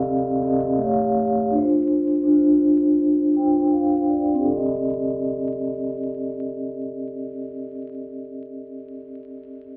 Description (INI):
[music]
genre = hip hop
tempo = 82 BPM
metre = 4/4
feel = swing 62% on 16ths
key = C dorian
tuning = A4 = 445 Hz
[part]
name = vibraphone with soft mallets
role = accompaniment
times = 0.0-9.8 s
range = A3 to G5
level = -22 LUFS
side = equal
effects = low-pass filter
[sound]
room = light reverb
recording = heard muffled through a wall, club ambience, vinyl crackle, EQ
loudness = -21 LUFS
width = mono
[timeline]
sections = 0.0-4.4 A section; 4.4-7.4 B section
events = filter sweep on vibraphone 0.0-4.4; vibraphone fill 3.0-4.4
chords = 0.0 Cm69; 0.8 A7b13; 1.5 Dm7; 4.4 Cm69